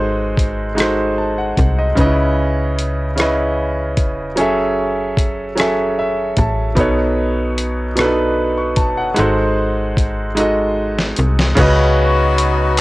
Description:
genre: slow six-eight R&B.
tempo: 50 BPM (dotted quarters).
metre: 6/8.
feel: straight.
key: unclear.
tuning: A4 = 441 Hz.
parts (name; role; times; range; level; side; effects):
clear concert grand piano; accompaniment; 0.0-12.8 s; B2 to C#6; -16 LUFS; right 1 dB; none.
slap-like FM bass; bass; 0.0-12.8 s; E1 to C#2; -20 LUFS; equal; none.
dusty soul sampler-style drum kit; drums; 0.4-12.8 s; crash cymbal, hi-hat, kick drum, rim click, snare drum; -18 LUFS; equal; cassette tape.
clear horn section; stabs; 11.6-12.8 s; B3 to F#4; -18 LUFS; left 4 dB; none.
room: digital ambience.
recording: home recording on cassette.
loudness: -14 LUFS.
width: side -19 dB against mid.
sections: 0.0-11.6 A section; 11.6-12.8 B section.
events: grand piano fill 5.6-6.8; drum fill 10.4-11.6.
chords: 0.0 G#7b9; 2.0 C#m9; 4.4 F#m7; 6.8 B9; 9.2 G#7b9; 11.6 C#9sus4.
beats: 0.77 | 1.97 3.17 | 4.37 5.57 | 6.77 7.97 | 9.17 10.37 | 11.57 12.77.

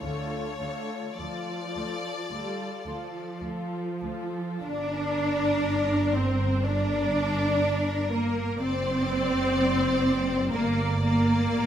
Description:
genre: classical, slow romantic movement for string orchestra.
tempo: 46-62 BPM.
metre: 4/4.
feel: rubato.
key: D minor, G minor from 4.6 s.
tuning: A4 = 440 Hz.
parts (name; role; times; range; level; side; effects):
clear studio violin section; melody; 0.0-11.7 s; Bb4 to D5; -36 LUFS; left 4 dB; none.
dark studio violin section; second line; 0.0-11.7 s; F4 to D5; -33 LUFS; equal; none.
dark studio viola section; accompaniment; 0.0-11.7 s; D3 to D4; -31 LUFS; right 1 dB; none.
rich studio cello section; bass; 0.0-11.7 s; D2 to D4; -28 LUFS; left 1 dB; none.
rich studio double bass section; bass; 0.0-11.7 s; F#1 to D2; -29 LUFS; right 2 dB; none.
room: moderate recital hall reverb, RT60 1.3 s.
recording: close, detailed microphones.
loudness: -24 LUFS.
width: side -10 dB against mid.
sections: 0.0-4.6 A section; 4.6-11.7 B section.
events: none.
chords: 0.0 Dm; 4.6 Gm; 8.6 D/F#; 10.5 Gm.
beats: | 0.03 1.18 2.32 3.42 | 4.63 5.66 6.64 7.63 | 8.60 9.56 10.53 11.51.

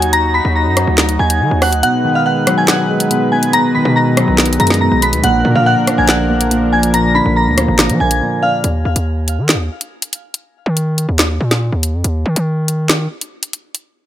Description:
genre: hip hop, drill.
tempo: 141 BPM.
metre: 4/4.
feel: half-time.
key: unclear.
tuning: A4 = 441 Hz.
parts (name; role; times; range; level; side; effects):
glassy synth bell; melody; 0.0-8.6 s; F5 to Cb7; -16 LUFS; left 1 dB; chorus, tremolo, ping-pong delay.
warm analog pad; sustained chords; 0.0-8.6 s; F3 to B4; -21 LUFS; equal; chorus.
distorted 808-style bass; bass; 0.0-13.1 s; Ab1 to F3; -16 LUFS; equal; distortion.
drill drum kit; drums; 0.0-13.8 s; handclaps, hi-hat, rim click, snare drum; -15 LUFS; equal; overdrive.
dark baby grand piano; accompaniment; 1.8-8.7 s; Bb2 to D4; -16 LUFS; equal; none.
room: little or no reverb.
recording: none.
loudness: -12 LUFS.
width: side -12 dB against mid.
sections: 0.0-8.6 A section; 8.6-14.1 B section.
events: kick muted 1.8-2.7; break 8.2-8.6, 8.6-14.1.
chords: 0.0 Ebm; 1.8 B6; 5.2 Bb; 8.6 N.C..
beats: | 0.13 0.56 0.98 1.41 | 1.83 2.26 2.68 3.11 | 3.53 3.96 4.38 4.81 | 5.24 5.66 6.09 6.51 | 6.94 7.36 7.79 8.21 | 8.64 9.07 9.49 9.92 | 10.34 10.77 11.19 11.62 | 12.04 12.47 12.89 13.32 | 13.75.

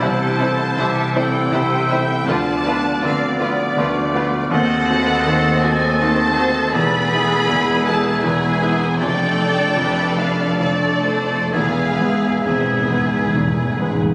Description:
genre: classical, romantic movement for piano and orchestra.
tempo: 61-83 BPM.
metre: 3/4.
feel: rubato.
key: unclear.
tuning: A4 = 437 Hz.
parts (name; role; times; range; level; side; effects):
clear grand piano; melody; 0.0-14.1 s; E1 to C5; -23 LUFS; equal; none.
rich studio violin section; melody; 0.0-13.3 s; D5 to B5; -27 LUFS; equal; none.
clear clarinet; second line; 0.0-13.8 s; A3 to F4; -29 LUFS; equal; none.
mellow hollow silver concert flute; second line; 0.0-13.8 s; D6 to A6; -27 LUFS; equal; none.
rich studio violin section; second line; 0.0-14.0 s; E4 to D5; -29 LUFS; equal; none.
warm oboe; second line; 0.0-13.8 s; C5 to F5; -30 LUFS; equal; none.
rich studio viola section; accompaniment; 0.0-13.8 s; G#4 to E5; -31 LUFS; equal; none.
mellow French horn section; sustained chords; 0.0-14.1 s; E3 to D4; -30 LUFS; equal; none.
clear studio cello section; bass; 0.0-13.9 s; D2 to C3; -28 LUFS; equal; none.
rich studio double bass section; bass; 0.0-13.9 s; E1 to D#2; -31 LUFS; equal; none.
timpani; percussion; 6.7-7.8, 11.5-14.1 s; E2; -28 LUFS; equal; none.
room: moderate concert hall reverb, RT60 1.9 s.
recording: recorded on a phone in the room, studio reverb, compression.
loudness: -18 LUFS.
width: mono.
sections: 0.0-14.1 A section.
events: timpani fill 11.5-14.1.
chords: 0.0 Am/C; 2.3 Bm7b5/D; 4.5 D#dim7; 6.7 E; 9.0 Dm/F; 11.5 E.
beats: | 0.03 0.79 1.53 | 2.28 3.04 3.79 | 4.53 5.26 6.01 | 6.74 7.48 8.23 | 9.00 9.77 10.60 | 11.53 12.47 13.35.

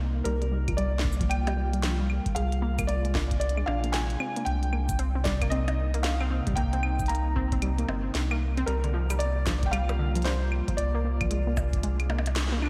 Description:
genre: IDM.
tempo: 114 BPM.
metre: 4/4.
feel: swing 62% on 16ths.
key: C minor.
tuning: A4 = 438 Hz.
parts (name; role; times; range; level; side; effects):
glassy FM pad; sustained chords; 0.0-12.7 s; C3 to F4; -38 LUFS; equal; ensemble chorus, built-in reverb.
warbly dusty pluck; arpeggios; 0.0-12.7 s; D3 to D4; -37 LUFS; equal; chorus, diffuse ambient delay.
warm sub bass; bass; 0.0-12.7 s; G1 to C2; -30 LUFS; equal; tube saturation.
felt-muted upright piano; melody; 0.2-12.3 s; Bb4 to Bb5; -36 LUFS; equal; delay.
glitchy drum kit; drums; 0.3-12.7 s; cabasa, claves, hi-hat, percussion blips, snare drum; -37 LUFS; equal; diffuse ambient delay.
electronic kick drum; drums; 0.7-11.8 s; none; -34 LUFS; equal; none.
room: moderate lush hall reverb, RT60 1.8 s.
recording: dreamy mix soaked in reverb.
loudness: -27 LUFS.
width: mono.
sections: 0.0-12.7 A section.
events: kick drops out 11.8-12.7; band accent 12.4.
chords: 0.3 Gm7/C; 2.4 Bb7/C; 4.5 Cm7; 8.7 Gm7/C; 10.8 Bb7/C.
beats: | 0.26 0.78 1.31 1.83 | 2.36 2.89 3.41 3.94 | 4.46 4.99 5.52 6.04 | 6.57 7.10 7.62 8.15 | 8.68 9.20 9.73 10.26 | 10.78 11.31 11.83 12.36.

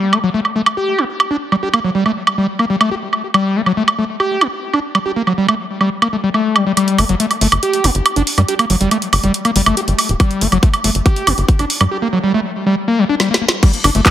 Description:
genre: psychedelic trance.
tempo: 140 BPM.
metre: 4/4.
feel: straight.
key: G harmonic minor.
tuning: A4 = 436 Hz.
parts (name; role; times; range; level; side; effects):
screaming distorted acid line; riff; 0.0-14.1 s; F#3 to G4; -16 LUFS; moving between left 5 dB and right 3 dB; distortion, chorus, auto-pan, sidechain pumping, ping-pong delay.
drum and bass drum kit; drums; 0.1-14.1 s; crash cymbal, handclaps, hi-hat, snare drum, woodblock; -17 LUFS; right 2 dB; none.
tight sequencer bass; bass; 7.0-14.0 s; D1 to G2; -16 LUFS; equal; tube saturation.
electronic kick drum; drums; 10.2-14.1 s; none; -11 LUFS; equal; none.
room: moderate plate reverb, RT60 1.4 s, digital ambience.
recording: heavily compressed radio sound.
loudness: -13 LUFS.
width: side -11 dB against mid.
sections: 0.0-6.8 A section; 6.8-13.6 B section.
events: build-up 6.8-13.6; drum fill 10.2-11.9, 13.2-13.6.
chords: 0.0 G5.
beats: 0.34 0.77 1.20 | 1.63 2.06 2.48 2.91 | 3.34 3.77 4.20 4.63 | 5.06 5.49 5.91 6.34 | 6.77 7.20 7.63 8.06 | 8.48 8.91 9.34 9.77 | 10.20 10.63 11.06 11.48 | 11.91 12.34 12.77 13.20 | 13.63 14.06.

